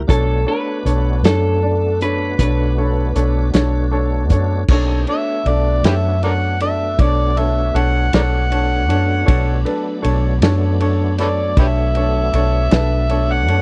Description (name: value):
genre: slow blues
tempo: 52 BPM (dotted quarters)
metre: 12/8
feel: straight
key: B minor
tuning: A4 = 440 Hz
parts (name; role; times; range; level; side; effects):
- tonewheel organ; sustained chords; 0.0-13.6 s; F#3 to G4; -30 LUFS; equal; slow rotary speaker, overdrive, chorus vibrato
- vintage muted fingered electric bass; bass; 0.0-13.6 s; B1 to F#2; -20 LUFS; equal; none
- electric guitar through a small old amp; melody; 0.1-3.9 s; A4 to B4; -24 LUFS; equal; spring reverb, slapback echo
- clear baby grand piano; accompaniment; 0.1-13.6 s; D4 to E5; -25 LUFS; equal; none
- vintage drum kit; drums; 0.1-13.6 s; crash cymbal, hi-hat, kick drum, ride cymbal, snare drum; -20 LUFS; equal; none
- overdriven harmonica; second line; 5.1-13.6 s; G4 to F#5; -23 LUFS; equal; none
room: little or no reverb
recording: dry, close 1970s-style studio recording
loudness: -17 LUFS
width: mono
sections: 0.0-4.7 A section; 4.7-13.6 B section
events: harmonica solo 4.7-13.6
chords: 0.1 Bm7